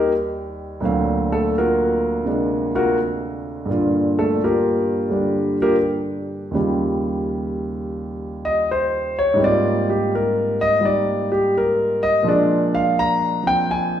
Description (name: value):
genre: solo jazz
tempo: 84 BPM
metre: 4/4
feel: swing 66% on 8ths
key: Eb major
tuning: A4 = 441 Hz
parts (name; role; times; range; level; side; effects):
- warm concert grand piano; solo; 0.0-14.0 s; D2 to Bb5; -18 LUFS; equal; none
room: wet recital hall reverb, RT60 1.3 s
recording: recorded in a church or concert hall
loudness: -18 LUFS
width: side -10 dB against mid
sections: 0.0-14.0 A section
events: grand piano solo 0.0-14.0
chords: 0.0 Ebmaj7; 0.8 D7alt; 3.7 Gm7; 6.5 Eb9; 9.4 Abmaj13; 12.2 Bb7